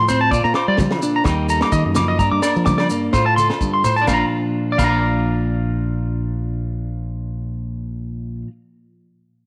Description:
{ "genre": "highlife guitar band", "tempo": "127 BPM", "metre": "4/4", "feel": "swing 55% on 16ths", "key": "Bb major", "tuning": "A4 = 440 Hz", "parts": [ { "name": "electric guitar at the edge of break-up", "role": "accompaniment", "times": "0.0-8.5 s", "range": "G2 to C5", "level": "-25 LUFS", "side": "equal", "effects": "none" }, { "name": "electric guitar at the edge of break-up", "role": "arpeggios", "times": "0.0-8.5 s", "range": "C5 to D6", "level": "-22 LUFS", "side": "equal", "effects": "spring reverb, slapback echo" }, { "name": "fingered electric bass", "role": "bass", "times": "0.0-8.4 s", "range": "Bb1 to G3", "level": "-26 LUFS", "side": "equal", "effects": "none" }, { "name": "agogo bells", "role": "percussion", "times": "0.1-4.9 s", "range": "none", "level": "-31 LUFS", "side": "equal", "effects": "none" }, { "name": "congas", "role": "percussion", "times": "0.1-4.9 s", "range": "none", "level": "-30 LUFS", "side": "equal", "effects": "none" }, { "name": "maracas", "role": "percussion", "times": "0.1-4.9 s", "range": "none", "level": "-36 LUFS", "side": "equal", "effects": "none" }, { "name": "tight funk drum kit", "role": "drums", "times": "0.3-4.9 s", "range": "crash cymbal, kick drum, snare drum", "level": "-27 LUFS", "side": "equal", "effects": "none" } ], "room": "light reverb", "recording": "none", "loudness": "-19 LUFS", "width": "mono", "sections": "0.0-4.1 A section; 4.1-7.8 B section", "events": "none", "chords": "0.3 Bb; 1.3 Eb; 2.2 Gm; 3.1 F/A; 4.1 Bb", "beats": "| 0.32 0.79 1.26 1.73 | 2.20 2.67 3.14 3.61 | 4.08 4.55 5.02 5.49 | 5.96 6.44 6.91 7.38" }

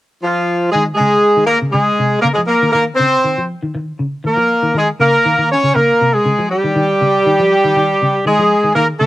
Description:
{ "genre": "afrobeat", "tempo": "120 BPM", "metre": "4/4", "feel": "straight", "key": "Bb dorian", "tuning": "A4 = 440 Hz", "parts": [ { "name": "clear horn section", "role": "melody", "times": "0.2-9.1 s", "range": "F3 to Db5", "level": "-12 LUFS", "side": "equal", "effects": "cassette tape" }, { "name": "semi-hollow electric guitar", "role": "arpeggios", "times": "0.7-9.1 s", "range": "C3 to F3", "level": "-20 LUFS", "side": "left 1 dB", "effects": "ensemble chorus, cassette tape" } ], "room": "moderate booth ambience, RT60 0.2 s", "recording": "home recording on cassette", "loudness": "-12 LUFS", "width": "side -16 dB against mid", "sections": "0.7-9.1 A section", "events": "none", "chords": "0.0 N.C.; 0.7 Bbm11; 2.8 Dbmaj13; 4.8 Bbmadd9; 6.8 Ab5", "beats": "0.24 | 0.75 1.25 1.75 2.25 | 2.75 3.25 3.75 4.25 | 4.76 5.26 5.76 6.26 | 6.75 7.25 7.75 8.25 | 8.75" }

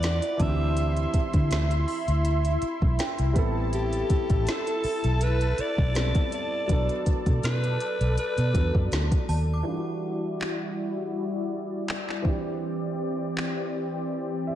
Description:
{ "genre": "contemporary R&B", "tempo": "81 BPM", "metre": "4/4", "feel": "swing 54% on 16ths", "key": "E minor", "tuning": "A4 = 442 Hz", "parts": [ { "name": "growling alto saxophone", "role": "melody", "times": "0.0-8.9 s", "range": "G4 to E5", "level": "-31 LUFS", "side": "equal", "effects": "diffuse ambient delay" }, { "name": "warm grand piano", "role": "accompaniment", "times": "0.0-14.6 s", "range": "E3 to B5", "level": "-34 LUFS", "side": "right 2 dB", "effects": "wide subtle chorus, low-pass filter" }, { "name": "warm analog pad", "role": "sustained chords", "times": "0.0-14.6 s", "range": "E3 to D6", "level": "-31 LUFS", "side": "equal", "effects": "chorus, low-pass filter" }, { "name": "vintage muted fingered electric bass", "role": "bass", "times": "0.0-9.6 s", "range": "A1 to D3", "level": "-25 LUFS", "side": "equal", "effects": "none" }, { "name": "smooth R&B drum kit", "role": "drums", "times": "0.0-13.6 s", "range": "handclaps, hi-hat, kick drum, snare drum", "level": "-27 LUFS", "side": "equal", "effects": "vintage 12-bit sampler grit" }, { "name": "synth chime", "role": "texture", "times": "0.0-3.7, 9.3-10.2 s", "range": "A5 to D6", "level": "-43 LUFS", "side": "right 2 dB", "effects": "ensemble chorus, diffuse ambient delay" } ], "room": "moderate plate reverb, RT60 2.1 s", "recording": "dreamy mix soaked in reverb", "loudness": "-24 LUFS", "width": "side -12 dB against mid", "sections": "0.0-9.7 A section; 9.7-14.6 B section", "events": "grand piano fill 2.6-3.7, 14.1-14.6; filter sweep 9.7-14.6", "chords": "0.4 D9sus4; 3.4 Am9; 6.7 Bm7; 9.7 Em9; 12.2 D9sus4", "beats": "0.03 | 0.77 1.51 2.25 2.99 | 3.73 4.47 5.21 5.95 | 6.69 7.43 8.18 8.92 | 9.66 10.40 11.14 11.88 | 12.62 13.36 14.10" }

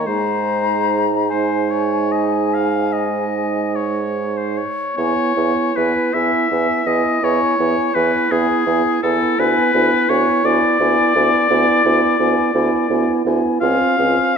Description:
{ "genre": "classical, slow romantic movement for wind quintet", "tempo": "48-58 BPM (dotted quarters)", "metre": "12/8", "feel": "rubato", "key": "Ab major, E major from 5.0 s", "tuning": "A4 = 442 Hz", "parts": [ { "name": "mellow silver concert flute", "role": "melody", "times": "0.0-14.4 s", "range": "G#5 to Bb5", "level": "-24 LUFS", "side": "left 11 dB", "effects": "none" }, { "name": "clear oboe", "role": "second line", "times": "0.0-14.4 s", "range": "G#4 to F5", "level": "-18 LUFS", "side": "left 3 dB", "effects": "none" }, { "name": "mellow French horn", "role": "accompaniment", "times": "0.0-14.4 s", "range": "Ab3 to C4", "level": "-24 LUFS", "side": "right 1 dB", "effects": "none" }, { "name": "mellow clarinet", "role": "accompaniment", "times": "0.0-14.4 s", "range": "Eb4 to F4", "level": "-22 LUFS", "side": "right 8 dB", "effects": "none" }, { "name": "warm bassoon", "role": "bass", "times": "0.0-14.2 s", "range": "Db2 to Ab2", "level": "-21 LUFS", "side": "right 4 dB", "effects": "none" } ], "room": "moderate concert hall reverb, RT60 1.7 s", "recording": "none", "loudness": "-15 LUFS", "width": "side -6 dB against mid", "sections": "0.0-5.0 A section; 5.0-14.4 B section", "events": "none", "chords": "0.1 Ab; 5.0 E; 9.4 E7/D; 13.6 Dbmaj7", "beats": "| 0.07 1.30 2.53 3.76 | 4.98 6.14 7.23 8.31 | 9.39 10.45 11.50 12.55 | 13.62" }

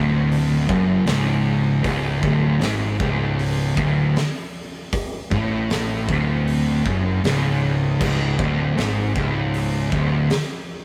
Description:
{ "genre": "stoner and doom metal", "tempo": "78 BPM", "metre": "4/4", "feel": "straight", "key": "unclear", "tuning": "A4 = 441 Hz", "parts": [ { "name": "fuzz guitar", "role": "riff", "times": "0.0-10.3 s", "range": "C#2 to A2", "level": "-22 LUFS", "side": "equal", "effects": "distortion" }, { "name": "fuzz fingered electric bass", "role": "bass", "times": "0.0-10.3 s", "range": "C#1 to A1", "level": "-28 LUFS", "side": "equal", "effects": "overdrive, tube saturation" }, { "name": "oversized low-tuned drum kit", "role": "drums", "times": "0.3-10.5 s", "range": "crash cymbal, hi-hat, kick drum, snare drum", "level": "-29 LUFS", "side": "equal", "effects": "none" } ], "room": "light reverb", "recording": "rough rehearsal-room recording", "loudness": "-21 LUFS", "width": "mono", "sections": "0.0-10.8 A section", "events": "none", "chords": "0.0 C#5", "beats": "0.32 1.08 | 1.85 2.62 3.39 4.16 | 4.93 5.69 6.46 7.23 | 8.00 8.76 9.53 10.30" }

